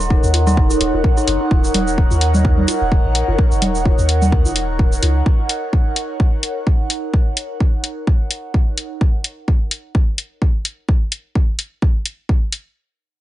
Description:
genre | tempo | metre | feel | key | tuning
minimal techno | 128 BPM | 4/4 | swing 56% on 16ths | Eb minor | A4 = 440 Hz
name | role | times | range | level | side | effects
dark detuned synth bell | riff | 0.0-1.5 s | Eb4 | -25 LUFS | left 1 dB | chorus, phaser, sidechain pumping, low-pass filter, dub echo
punchy sub bass | bass | 0.0-5.2 s | Eb1 to Eb2 | -18 LUFS | equal | sidechain pumping
electronic cabasa and hi-hat | drums | 0.0-12.6 s | none | -22 LUFS | left 1 dB | none
airy breathy pad | texture | 0.0-9.0 s | Eb4 to Gb5 | -22 LUFS | right 1 dB | chorus, phaser, sidechain pumping
electronic kick drum | drums | 0.1-12.4 s | none | -15 LUFS | equal | none
congas | percussion | 0.3-5.1 s | none | -23 LUFS | left 1 dB | none
room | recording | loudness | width
little or no reverb | nothing above 10.4 kHz | -15 LUFS | side -14 dB against mid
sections
0.0-12.8 A section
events
filter sweep on synth bell 0.0-1.5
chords
0.0 Ebm7

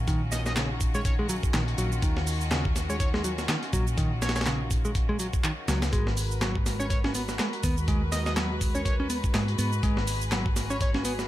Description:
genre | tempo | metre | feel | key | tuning
breakbeat, breaks | 123 BPM | 4/4 | swing 57% on 16ths | Eb minor | A4 = 440 Hz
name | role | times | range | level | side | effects
rich studio string section | sustained chords | 0.0-11.3 s | Eb3 to Cb5 | -35 LUFS | left 1 dB | vintage 12-bit sampler grit, sidechain pumping
hollow-body short-scale fingered electric bass | bass | 0.0-11.3 s | Ab1 to Ab2 | -30 LUFS | equal | none
modern bright picked electric bass | riff | 0.1-11.1 s | Db3 to Db4 | -32 LUFS | equal | tape echo
breakbeat sampler-style drum kit | drums | 0.1-11.3 s | hi-hat, kick drum, snare drum | -28 LUFS | equal | none
punchy analog drum machine | drums | 0.1-11.3 s | handclaps, hi-hat, shaker | -36 LUFS | right 2 dB | overdrive
plucky unison lead | melody | 0.3-10.9 s | Db5 to Eb5 | -36 LUFS | equal | AM radio sound, tape echo
room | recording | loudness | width
digital ambience | none | -24 LUFS | side -14 dB against mid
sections
0.0-11.3 A section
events
none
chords
0.0 Ebm9; 5.9 Abm9

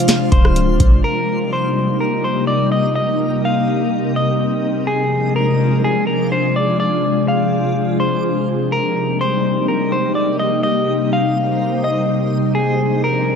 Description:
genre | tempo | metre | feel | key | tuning
hip hop, atmospheric cloud-rap | 125 BPM | 4/4 | half-time | C minor | A4 = 440 Hz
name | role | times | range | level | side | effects
clean electric guitar | melody | 0.0-13.4 s | Ab4 to F5 | -20 LUFS | left 1 dB | ping-pong delay
ethereal airy pad | sustained chords | 0.0-13.4 s | C3 to Ab4 | -17 LUFS | left 1 dB | ensemble chorus, built-in reverb, sidechain pumping
booming analog drum machine | drums | 0.0-1.0 s | hi-hat, kick drum, rim click, snare drum | -13 LUFS | equal | none
backwards swelling texture | texture | 0.0-13.4 s | C4 to F5 | -28 LUFS | equal | built-in reverb
clean 808-style bass | bass | 0.3-1.0 s | C1 to Ab1 | -16 LUFS | equal | none
room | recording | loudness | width
light reverb | dark, warm production | -15 LUFS | side -6 dB against mid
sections
0.0-1.0 A section; 1.0-13.4 B section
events
none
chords
0.0 Dm7b5; 1.0 Cm7; 4.9 Dm7b5; 8.7 Cm7; 12.6 Dm7b5

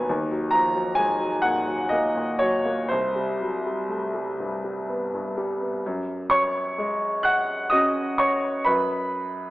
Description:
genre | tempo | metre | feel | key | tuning
classical, impressionist solo piano | 63 BPM | 3/4 | uneven beats, rubato | Gb lydian | A4 = 440 Hz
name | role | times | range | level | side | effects
clear concert grand piano | solo | 0.0-9.5 s | C2 to Gb6 | -22 LUFS | equal | none
room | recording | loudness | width
moderate scoring stage reverb, RT60 1.6 s | AM radio sound | -22 LUFS | side -18 dB against mid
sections
0.0-5.8 A section; 5.8-9.5 B section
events
none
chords
0.1 Ebmadd9; 2.9 C5; 5.8 Gbsus2; 8.7 Esus2/F# (rootless)

